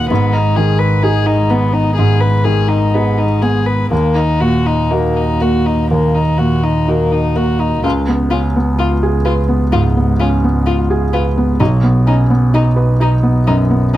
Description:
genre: neoclassical piano and strings.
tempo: 63 BPM.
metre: 4/4.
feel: uneven beats, rubato.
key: unclear.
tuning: A4 = 440 Hz.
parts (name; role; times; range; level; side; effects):
warm violin; melody; 0.0-14.0 s; Bb3 to Cb5; -18 LUFS; left 4 dB; slapback echo.
felt-muted upright piano; accompaniment; 0.0-14.0 s; B1 to Cb5; -16 LUFS; right 1 dB; none.
dark double bass; bass; 0.0-14.0 s; Ab1 to Eb2; -15 LUFS; equal; none.
room: little or no reverb.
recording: none.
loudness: -11 LUFS.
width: side -14 dB against mid.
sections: 0.0-7.8 A section; 7.8-14.0 B section.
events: none.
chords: 0.1 Abm; 3.9 Ebm; 7.8 Db7; 11.6 B.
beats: | 0.10 1.03 1.98 2.94 | 3.91 4.91 5.90 6.88 | 7.84 8.79 9.73 10.67 | 11.60 12.54 13.48.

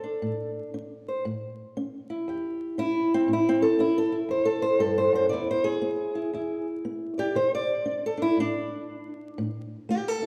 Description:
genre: acoustic country blues, solo or duo.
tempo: 118 BPM.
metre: 4/4.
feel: swing 64% on 8ths.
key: unclear.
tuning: A4 = 441 Hz.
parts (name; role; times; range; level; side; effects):
fingerpicked old ladder-braced acoustic guitar; solo; 0.0-10.3 s; E2 to D5; -27 LUFS; equal; none.
room: wet recital hall reverb, RT60 1.8 s.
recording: recorded in a church or concert hall, vinyl crackle.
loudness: -27 LUFS.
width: mono.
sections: 0.0-10.3 A section.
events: steel-string acoustic guitar solo 0.0-10.3.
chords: 0.0 D5; 1.3 A7; 5.3 E7; 7.3 D5; 9.4 A7(no3).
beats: 0.23 0.74 | 1.25 1.76 2.27 2.78 | 3.29 3.79 4.30 4.81 | 5.32 5.83 6.33 6.84 | 7.35 7.85 8.36 8.87 | 9.38 9.88.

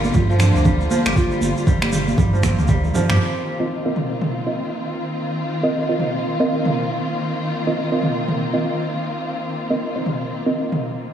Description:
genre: afro house.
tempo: 118 BPM.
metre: 4/4.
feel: swing 60% on 16ths.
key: unclear.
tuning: A4 = 440 Hz.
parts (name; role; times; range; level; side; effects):
warm symphonic string section; sustained chords; 0.0-11.1 s; D3 to F4; -24 LUFS; left 1 dB; sidechain pumping.
kora; arpeggios; 0.0-4.5 s; F3 to G4; -26 LUFS; right 2 dB; sidechain pumping, analog delay.
warm sub bass; bass; 0.0-3.2 s; G1 to G2; -20 LUFS; right 1 dB; sidechain pumping.
congas; percussion; 0.0-3.2 s; none; -23 LUFS; right 2 dB; none.
tube shaker; percussion; 0.0-3.2 s; none; -35 LUFS; right 3 dB; none.
polished pan flute; melody; 0.1-1.6 s; D4 to F4; -28 LUFS; left 2 dB; analog delay.
deep house drum kit; drums; 0.1-10.8 s; finger snaps, toms; -25 LUFS; right 1 dB; overdrive.
electronic kick drum; drums; 0.1-2.8 s; none; -19 LUFS; equal; overdrive.
deep mellow chord stab; stabs; 3.6-11.1 s; C4 to Eb5; -23 LUFS; right 2 dB; chorus, sidechain pumping, analog delay.
room: wet lush hall reverb, RT60 1.9 s.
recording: dreamy mix soaked in reverb, studio ambience.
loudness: -18 LUFS.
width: side -9 dB against mid.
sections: 0.0-3.2 A section; 3.2-11.1 B section.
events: drum fill 2.2-3.2.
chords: 0.0 Gm7; 3.2 F7sus4.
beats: 0.15 0.66 | 1.17 1.67 2.18 2.69 | 3.20 3.71 4.22 4.72 | 5.23 5.74 6.25 6.76 | 7.27 7.78 8.28 8.79 | 9.30 9.81 10.32 10.83.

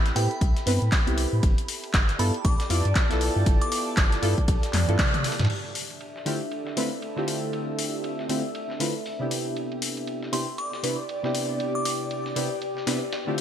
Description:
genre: deep house.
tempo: 118 BPM.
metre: 4/4.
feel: swing 60% on 16ths.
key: unclear.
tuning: A4 = 439 Hz.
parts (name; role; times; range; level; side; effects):
warm analog keys; stabs; 0.0-13.4 s; C3 to D5; -29 LUFS; equal; chorus, sidechain pumping, digital delay.
warm sub bass; bass; 0.0-5.5 s; G1 to A2; -25 LUFS; equal; sidechain pumping.
airy breathy pad; texture; 0.0-13.4 s; D4 to B5; -33 LUFS; equal; chorus, phaser, sidechain pumping.
dusty soul sampler-style drum kit; drums; 0.1-13.4 s; hi-hat, ride cymbal, snare drum; -38 LUFS; right 1 dB; sidechain pumping on cymbals, high-pass filter on cymbals, low-pass filter on cymbals, high-pass filter on snare, low-pass filter on snare, sidechain pumping on hats, high-pass filter on hats, low-pass filter on hats, gated reverb.
punchy analog drum machine; drums; 0.1-13.4 s; crash cymbal, handclaps, hi-hat, toms; -30 LUFS; left 2 dB; gated reverb.
glassy synth bell; melody; 0.2-3.8, 10.3-12.0 s; G5 to D6; -34 LUFS; right 1 dB; chorus, digital delay.
electronic kick drum; drums; 0.4-5.1 s; none; -22 LUFS; equal; none.
room: moderate lush hall reverb, RT60 2.5 s.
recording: bright 1980s-style digital production.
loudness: -23 LUFS.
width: side -10 dB against mid.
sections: 0.0-5.5 A section; 5.5-13.4 B section.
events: drum fill 4.7-5.5; band accent 5.0.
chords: 0.0 Am9; 1.4 G13; 5.5 Cmaj9.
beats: 0.41 0.92 | 1.43 1.94 2.45 2.96 | 3.46 3.97 4.48 4.99 | 5.50 6.01 6.51 7.02 | 7.53 8.04 8.55 9.06 | 9.57 10.07 10.58 11.09 | 11.60 12.11 12.62 13.12.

